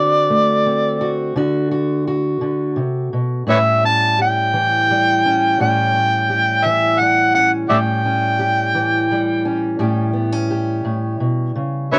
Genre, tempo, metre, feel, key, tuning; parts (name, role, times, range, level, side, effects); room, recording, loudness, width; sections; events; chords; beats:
acoustic country blues, solo or duo; 57 BPM (dotted quarters); 12/8; straight; A mixolydian; A4 = 441 Hz
overdriven harmonica; melody; 0.0-12.0 s; B4 to A5; -18 LUFS; equal; cassette tape
fingerpicked steel-string acoustic guitar; accompaniment; 0.0-12.0 s; A2 to G4; -21 LUFS; equal
light reverb; home recording on cassette, nothing above 10.9 kHz; -17 LUFS; mono
0.0-12.0 A section
0.0 D7; 3.5 A7
0.32 1.37 2.42 | 3.48 4.53 5.59 6.64 | 7.70 8.75 9.80 10.85 | 11.91